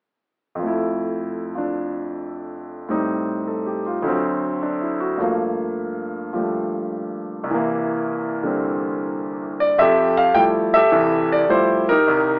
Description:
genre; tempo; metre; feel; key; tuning
solo jazz; 105 BPM; 4/4; swing 68% on 8ths; F major; A4 = 442 Hz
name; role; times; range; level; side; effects
clear concert grand piano; solo; 0.6-12.4 s; C2 to G5; -21 LUFS; equal; none
room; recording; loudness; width
moderate studio ambience, RT60 0.5 s; AM radio sound; -21 LUFS; mono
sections
0.6-9.8 A section; 9.8-12.4 B section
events
none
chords
0.6 Fmaj7; 2.9 Am7b5; 4.0 D7; 5.2 Gm9; 7.5 C7; 9.8 Fmaj9

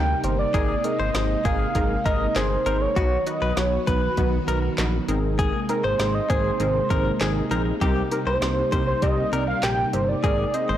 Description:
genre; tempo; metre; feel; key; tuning
synth-pop; 99 BPM; 4/4; straight; unclear; A4 = 440 Hz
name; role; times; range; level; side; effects
octave-doubled lead; melody; 0.0-10.8 s; Bb4 to G5; -25 LUFS; right 2 dB; chorus, slapback echo
funky polysynth comp; accompaniment; 0.0-10.7 s; B3 to C5; -29 LUFS; left 1 dB; chorus
string machine, violas; sustained chords; 0.0-10.8 s; C3 to F#4; -29 LUFS; equal; ensemble chorus
smooth synth bass; bass; 0.0-10.8 s; G1 to D2; -26 LUFS; equal; none
deep house drum kit; drums; 0.2-10.7 s; handclaps, hi-hat, kick drum, snare drum; -27 LUFS; equal; none
direct-recorded clean electric guitar; second line; 0.5-10.8 s; F#4 to C5; -30 LUFS; left 5 dB; spring reverb, slapback echo
room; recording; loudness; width
moderate plate reverb, RT60 1.2 s; blown-out, overdriven recording, overdrive; -20 LUFS; side -11 dB against mid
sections
0.0-10.8 A section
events
none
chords
0.0 Eb6; 0.5 Abadd9; 3.0 B; 5.1 Abadd9; 7.8 Cm7; 10.2 Abadd9

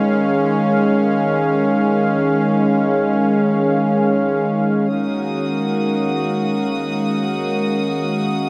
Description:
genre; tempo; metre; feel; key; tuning
ambient; free time; none; none; Eb minor; A4 = 440 Hz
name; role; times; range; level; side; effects
warm analog pad; sustained chords; 0.0-8.5 s; Eb3 to F5; -18 LUFS; equal; chorus
pedal harmonium; drone; 4.9-8.5 s; Eb3 to Bb3; -28 LUFS; equal; none
warm studio violin section; texture; 4.9-8.5 s; Gb4 to Eb6; -28 LUFS; equal; none
room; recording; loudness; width
wet huge ambient reverb, RT60 8.8 s; dreamy mix soaked in reverb; -18 LUFS; mono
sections
0.0-4.9 A section; 4.9-8.5 B section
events
filter sweep on analog synth pad 4.9-8.5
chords
0.0 Eb9sus4; 4.9 Ebm7

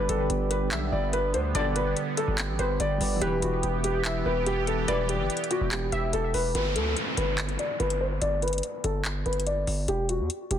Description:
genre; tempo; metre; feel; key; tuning
hip hop, trap; 144 BPM; 4/4; half-time; unclear; A4 = 440 Hz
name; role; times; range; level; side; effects
felt-muted upright piano; melody; 0.0-10.6 s; F#4 to D5; -29 LUFS; left 1 dB; low-pass filter, ping-pong delay
warbly dusty pluck; second line; 0.0-6.1 s; B4 to E5; -36 LUFS; right 1 dB; chorus, ping-pong delay
soft electric-piano-like synth keys; accompaniment; 0.0-6.6 s; E3 to D5; -36 LUFS; left 1 dB; chorus
sweeping resonant pad; sustained chords; 0.0-6.5 s; D3 to G4; -33 LUFS; right 3 dB; chorus
mellow brass ensemble; stabs; 0.0-5.2 s; B1 to E3; -37 LUFS; left 4 dB; none
distorted 808-style bass; bass; 0.0-10.6 s; E1 to E2; -29 LUFS; equal; distortion
trap drum kit; drums; 0.1-10.6 s; handclaps, hi-hat; -33 LUFS; left 2 dB; vintage 12-bit sampler grit
downlifter; sound effects; 6.5-9.9 s; none; -34 LUFS; equal; none
room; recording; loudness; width
light reverb; dense, heavily limited modern master; -24 LUFS; side -9 dB against mid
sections
0.0-6.5 A section; 6.5-10.6 B section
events
none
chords
0.0 G; 3.2 Em; 6.5 G5; 9.9 Em

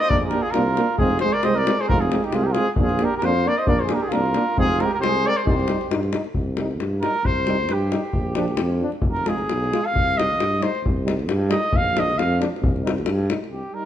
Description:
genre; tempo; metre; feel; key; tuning
balkan folk, Balkan brass band; 134 BPM; 2/4; swing 56% on 16ths; C minor; A4 = 441 Hz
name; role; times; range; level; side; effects
warm trumpet; melody; 0.0-13.9 s; G4 to F5; -23 LUFS; equal; none
warm flugelhorn; second line; 0.0-5.9 s; Eb4 to C5; -27 LUFS; right 5 dB; none
warm euphonium; accompaniment; 0.1-13.9 s; F3 to Bb3; -29 LUFS; right 5 dB; none
warm trombone; accompaniment; 0.1-13.9 s; C4 to F4; -30 LUFS; left 4 dB; none
warm tuba; bass; 0.1-13.6 s; F1 to G2; -25 LUFS; equal; none
davul; percussion; 0.1-13.5 s; none; -25 LUFS; left 2 dB; none
room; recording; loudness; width
moderate scoring stage reverb, RT60 1.6 s; close, detailed microphones; -19 LUFS; side -11 dB against mid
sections
0.0-6.4 A section; 6.4-13.5 B section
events
trumpet solo 6.4-13.5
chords
0.0 Bb; 1.0 Fm; 2.8 Bb; 4.6 Fm; 5.5 Cm; 8.2 Bb; 9.0 Fm; 9.9 Cm; 11.7 Bb; 12.6 Cm

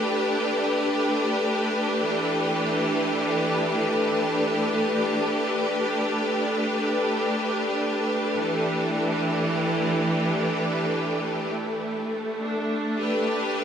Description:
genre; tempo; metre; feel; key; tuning
ambient; free time; none; none; unclear; A4 = 440 Hz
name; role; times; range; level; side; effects
bright studio string section; solo; 0.0-13.6 s; E3 to B4; -22 LUFS; equal; tape echo
room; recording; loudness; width
wet shimmer reverb, RT60 7.8 s; none; -22 LUFS; side -8 dB against mid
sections
0.0-13.6 A section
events
none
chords
0.0 G; 2.0 Em7; 5.2 G; 8.4 Em7; 11.5 G

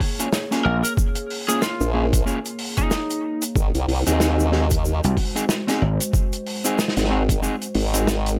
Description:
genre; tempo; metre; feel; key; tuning
glitch hop; 93 BPM; 4/4; swing 59% on 16ths; unclear; A4 = 440 Hz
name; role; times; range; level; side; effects
dark analog pad; sustained chords; 0.0-8.4 s; Ab3 to Db5; -34 LUFS; equal; chorus, phaser, sidechain pumping
electronic kick drum; drums; 0.0-7.4 s; none; -24 LUFS; equal; overdrive
warm soul drum kit; drums; 0.0-8.4 s; hi-hat, snare drum; -28 LUFS; equal; none
mellow electric guitar; stabs; 0.2-8.1 s; Bb3 to Ab4; -28 LUFS; equal; vintage 12-bit sampler grit, sidechain pumping, tape echo
egg shaker; percussion; 0.2-8.4 s; none; -32 LUFS; equal; none
lightly driven lead guitar; melody; 0.6-3.4 s; Eb4 to Bb4; -30 LUFS; equal; tape echo
gritty slap bass; bass; 0.7-0.8, 5.0-6.0 s; Ab1 to C2; -22 LUFS; equal; overdrive
formant-sweep wobble bass; bass; 1.8-8.4 s; Ab1 to Eb2; -23 LUFS; equal; chorus
room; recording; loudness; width
light reverb; none; -22 LUFS; mono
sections
0.0-8.4 A section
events
kick drops out 7.4-8.4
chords
0.0 Bbm7; 3.6 Ab7

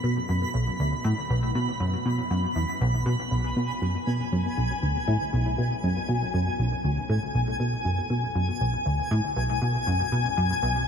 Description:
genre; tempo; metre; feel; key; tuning
ambient, sequencer-driven space music; 119 BPM; 4/4; straight; B dorian; A4 = 440 Hz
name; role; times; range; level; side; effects
plucky analog bass; riff; 0.0-10.9 s; B1 to B2; -25 LUFS; equal; lush chorus, cassette tape, ping-pong delay
twinkling granular texture; texture; 0.0-10.9 s; G#5 to B5; -30 LUFS; left 2 dB; built-in reverb, shimmer reverb
analog drone; bass; 4.5-10.9 s; B1; -45 LUFS; equal; none
room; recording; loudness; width
moderate huge ambient reverb, RT60 8.5 s; dreamy mix soaked in reverb; -24 LUFS; side -7 dB against mid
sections
0.0-3.3 A section; 3.3-10.9 B section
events
none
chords
0.0 B5; 3.3 Bm

